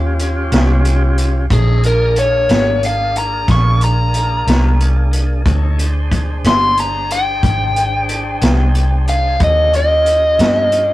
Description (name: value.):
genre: slow blues.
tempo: 61 BPM (dotted quarters).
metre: 12/8.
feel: straight.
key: Bb mixolydian.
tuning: A4 = 439 Hz.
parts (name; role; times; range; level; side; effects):
overdriven tonewheel organ; sustained chords; 0.0-10.9 s; D3 to Db5; -25 LUFS; right 1 dB; slow rotary speaker.
vintage muted fingered electric bass; bass; 0.0-10.9 s; G1 to G2; -15 LUFS; equal; none.
vintage drum kit; drums; 0.2-10.9 s; hi-hat, kick drum, snare drum; -18 LUFS; equal; none.
overdriven electric guitar; melody; 1.5-10.9 s; Ab4 to Db6; -15 LUFS; left 1 dB; none.
room: moderate small room reverb, RT60 0.5 s.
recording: rough rehearsal-room recording, tube saturation.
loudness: -12 LUFS.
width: side -16 dB against mid.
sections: 0.0-10.9 A section.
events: none.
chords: 0.0 Eb9; 1.5 Bb9; 9.4 Eb9.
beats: 0.51 | 1.50 2.49 3.48 4.47 | 5.46 6.45 7.43 8.42 | 9.41 10.40.